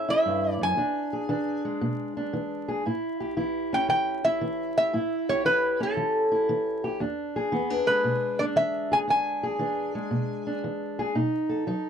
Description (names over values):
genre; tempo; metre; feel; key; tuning
acoustic country blues, solo or duo; 116 BPM; 4/4; swing 68% on 8ths; E mixolydian; A4 = 440 Hz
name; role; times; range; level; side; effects
metal-body resonator slide guitar; melody; 0.0-10.6 s; A4 to G#5; -24 LUFS; equal; none
fingerpicked steel-string acoustic guitar; accompaniment; 0.0-11.9 s; E2 to A4; -28 LUFS; equal; none
room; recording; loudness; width
wet booth ambience, RT60 0.2 s; dark, warm production, vinyl crackle; -24 LUFS; side -8 dB against mid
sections
0.0-11.9 A section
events
none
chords
0.0 A7; 0.8 E7; 2.9 A7; 7.0 E7; 11.1 B7